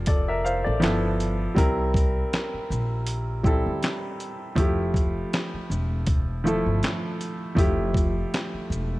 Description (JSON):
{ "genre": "lo-fi hip hop", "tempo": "80 BPM", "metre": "4/4", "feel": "swing 56% on 16ths", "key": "F major", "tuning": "A4 = 439 Hz", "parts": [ { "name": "clear upright piano", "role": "accompaniment", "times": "0.0-9.0 s", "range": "F3 to F5", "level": "-26 LUFS", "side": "equal", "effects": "cassette tape, low-pass filter" }, { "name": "upright bass", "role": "bass", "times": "0.0-9.0 s", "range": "E1 to D2", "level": "-28 LUFS", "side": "equal", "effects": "none" }, { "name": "dusty soul sampler-style drum kit", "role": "drums", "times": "0.1-8.9 s", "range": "handclaps, hi-hat, kick drum, shaker, snare drum", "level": "-25 LUFS", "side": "equal", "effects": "none" } ], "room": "light reverb, small room reverb", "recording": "none", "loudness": "-22 LUFS", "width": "side -18 dB against mid", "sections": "0.0-9.0 A section", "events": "none", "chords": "0.0 Gm7; 0.8 G13; 1.6 C7; 4.6 Fmaj9", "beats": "0.07 0.82 | 1.57 2.32 3.07 3.82 | 4.57 5.32 6.07 6.82 | 7.57 8.32" }